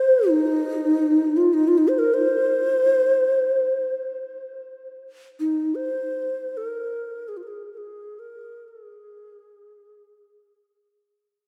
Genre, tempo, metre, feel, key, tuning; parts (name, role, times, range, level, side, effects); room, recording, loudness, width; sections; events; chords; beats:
world meditative, free-time meditation music; free time; Ab major pentatonic; A4 = 439 Hz
mellow hollow low Native American-style wooden flute; solo; 0.0-10.5 s; Eb4 to C5; -22 LUFS; equal; tape echo
wet lush hall reverb, RT60 3.2 s; dreamy mix soaked in reverb; -22 LUFS; mono
0.0-11.3 A section
fade-out 0.0-11.3
free time